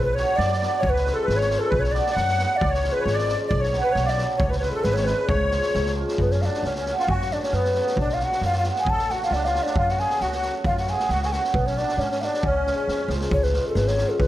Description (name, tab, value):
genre	balkan folk, Balkan wedding band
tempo	135 BPM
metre	2/4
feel	swing 54% on 16ths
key	C# phrygian dominant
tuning	A4 = 443 Hz
part	breathy mellow ney	melody	0.0-14.3 s	A4 to A5	-25 LUFS	left 1 dB	none
part	musette accordion	second line	0.0-13.1 s	B3 to F#5	-30 LUFS	right 1 dB	slapback echo
part	upright bass	bass	0.0-14.3 s	G#1 to G#2	-26 LUFS	equal	none
part	cimbalom	accompaniment	0.2-14.2 s	E#3 to F#4	-27 LUFS	right 1 dB	none
part	street-band drum kit	percussion	0.2-14.3 s	kick drum, snare drum	-29 LUFS	equal	none
room	light reverb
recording	none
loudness	-20 LUFS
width	side -14 dB against mid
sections	0.0-6.2 A section; 6.2-13.3 B section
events	none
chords	0.0 Bm; 0.8 C#; 1.7 Bm; 2.6 C#; 3.5 Bm; 4.4 C#; 6.2 F#m; 8.0 Bm; 8.9 D; 9.8 F#m; 11.5 Bm; 12.4 C#